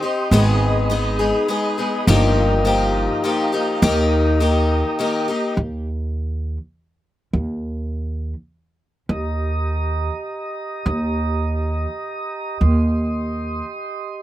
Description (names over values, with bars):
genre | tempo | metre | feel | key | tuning
indie folk with a building arrangement | 102 BPM | 3/4 | straight | Eb major | A4 = 440 Hz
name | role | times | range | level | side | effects
picked twelve-string acoustic guitar | accompaniment | 0.0-5.6 s | G2 to Ab4 | -19 LUFS | left 3 dB | none
mellow tonewheel organ | sustained chords | 0.0-5.6, 9.1-14.2 s | G4 to Eb6 | -26 LUFS | right 2 dB | slow rotary speaker
upright bass | bass | 0.3-13.6 s | G1 to Eb2 | -19 LUFS | right 1 dB | none
room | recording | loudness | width
little or no reverb | recorded outdoors, with no room sound | -18 LUFS | side -14 dB against mid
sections
0.0-5.6 A section; 5.6-9.1 B section; 9.1-14.2 C section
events
none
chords
0.3 Abm; 2.1 Ebadd9/G; 3.8 Eb; 5.6 N.C.; 9.1 Eb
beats
| 0.31 0.90 1.48 | 2.07 2.65 3.24 | 3.82 4.41 4.99 | 5.58 6.16 6.75 | 7.34 7.92 8.51 | 9.10 9.68 10.27 | 10.85 11.44 12.03 | 12.61 13.20 13.78